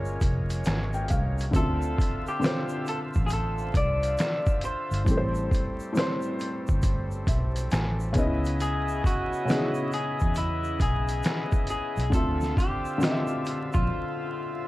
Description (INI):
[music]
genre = lo-fi hip hop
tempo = 68 BPM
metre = 4/4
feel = swing 63% on 16ths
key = unclear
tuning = A4 = 440 Hz
[part]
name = felt-muted upright piano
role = accompaniment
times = 0.0-14.7 s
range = A2 to Ab5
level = -31 LUFS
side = left 1 dB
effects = low-pass filter
[part]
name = accordion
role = sustained chords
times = 0.0-14.7 s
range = C#3 to E5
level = -36 LUFS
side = equal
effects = low-pass filter
[part]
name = vintage muted fingered electric bass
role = bass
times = 0.0-13.9 s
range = F1 to E2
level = -28 LUFS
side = equal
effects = none
[part]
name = egg shaker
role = percussion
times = 0.1-13.9 s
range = none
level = -51 LUFS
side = right 3 dB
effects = none
[part]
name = trip hop sampler-style drum kit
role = drums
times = 0.2-13.9 s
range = finger snaps, hi-hat, kick drum, snare drum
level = -27 LUFS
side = equal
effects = none
[part]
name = electric guitar through a small old amp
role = melody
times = 1.6-14.7 s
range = E4 to D5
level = -31 LUFS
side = left 1 dB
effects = low-pass filter
[sound]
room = light reverb, small room ambience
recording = vinyl crackle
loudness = -24 LUFS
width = side -17 dB against mid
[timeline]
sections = 0.0-14.7 A section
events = break 0.0-1.5, 13.9-14.7; felt piano fill 0.2-1.5, 6.8-8.6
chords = 0.0 Bbm9; 1.5 Dm9; 5.1 Am9; 8.2 C#m9; 12.1 Dm9